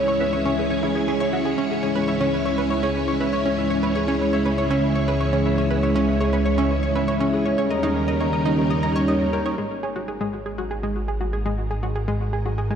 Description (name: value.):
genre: ambient, sequencer-driven space music.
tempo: 120 BPM.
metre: 4/4.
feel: straight.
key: C# dorian, G# minor from 9.6 s.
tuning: A4 = 440 Hz.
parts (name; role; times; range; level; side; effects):
string machine, full ensemble; sustained chords; 0.0-12.8 s; G3 to C#5; -23 LUFS; right 1 dB; ensemble chorus.
concert harp; arpeggios; 0.0-12.8 s; G#3 to G#5; -27 LUFS; left 2 dB; auto-pan, low-pass filter, analog delay.
fat analog bass; bass; 0.0-12.8 s; G#1 to D#2; -27 LUFS; equal; none.
pulsing gated texture; texture; 0.0-9.6 s; C#5; -39 LUFS; right 5 dB; none.
analog pluck; riff; 0.1-12.8 s; G#3 to A#5; -27 LUFS; right 2 dB; chorus, analog delay.
room: wet lush hall reverb, RT60 2.7 s.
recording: dark, warm production.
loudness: -20 LUFS.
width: side -8 dB against mid.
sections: 0.0-9.6 A section; 9.6-12.8 B section.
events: fade-in on analog synth bass 0.0-9.6.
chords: 0.0 C#m; 7.6 D#7; 9.6 G#madd9.